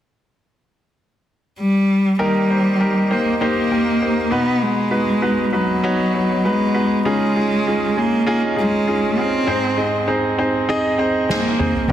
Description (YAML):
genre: piano-driven pop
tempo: 99 BPM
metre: 4/4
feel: straight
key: Ab major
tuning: A4 = 440 Hz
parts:
  - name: rich cello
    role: melody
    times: 1.6-11.9 s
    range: F#3 to C4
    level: -18 LUFS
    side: equal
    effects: digital delay
  - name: clear concert grand piano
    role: accompaniment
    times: 2.2-11.9 s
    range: Ab2 to Eb5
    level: -19 LUFS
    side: equal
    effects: none
  - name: soft-mallet drum kit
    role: drums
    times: 11.3-11.9 s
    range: kick drum, snare drum, toms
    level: -21 LUFS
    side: equal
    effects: soft clipping on kick
room: wet scoring stage reverb, RT60 1.6 s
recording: dense, heavily limited modern master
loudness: -16 LUFS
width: side -11 dB against mid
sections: 0.0-2.2 A section; 2.2-11.9 B section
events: drum fill 11.3-11.9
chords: 0.0 N.C.; 2.2 Eb; 4.3 B; 7.0 Dbadd9; 9.5 Ab